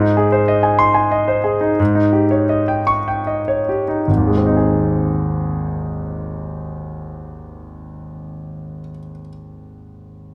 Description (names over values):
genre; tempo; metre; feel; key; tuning
classical, romantic character piece for solo piano; 47-66 BPM (dotted quarters); 6/8; rubato; Ab major; A4 = 438 Hz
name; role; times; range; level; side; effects
clear concert grand piano; solo; 0.0-10.3 s; Ab1 to Db6; -19 LUFS; equal; none
room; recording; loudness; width
light reverb; close, detailed microphones; -17 LUFS; mono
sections
0.0-4.1 A section; 4.1-8.5 B section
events
slowing down 0.0-4.1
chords
0.0 Ab; 1.8 Eb7/Ab; 4.1 Ab